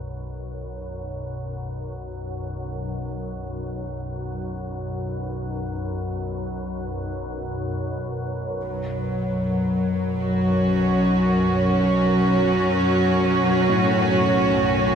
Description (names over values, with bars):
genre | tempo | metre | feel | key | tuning
dark ambient drone | free time | none | none | unclear | A4 = 440 Hz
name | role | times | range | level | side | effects
organ-like drone | drone | 0.0-14.9 s | B1 to F#2 | -27 LUFS | equal | ensemble chorus, built-in reverb
warm chamber cello section | sustained chords | 8.6-14.9 s | F#3 to F#4 | -19 LUFS | right 1 dB | none
dark grand piano | arpeggios | 13.7-14.9 s | A2 | -26 LUFS | left 4 dB | analog chorus
room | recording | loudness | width
wet huge ambient reverb, RT60 7.5 s | dreamy mix soaked in reverb | -21 LUFS | side -7 dB against mid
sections
0.0-14.9 A section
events
fade-in on synth drone 0.0-14.9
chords
0.0 B5; 8.6 F#m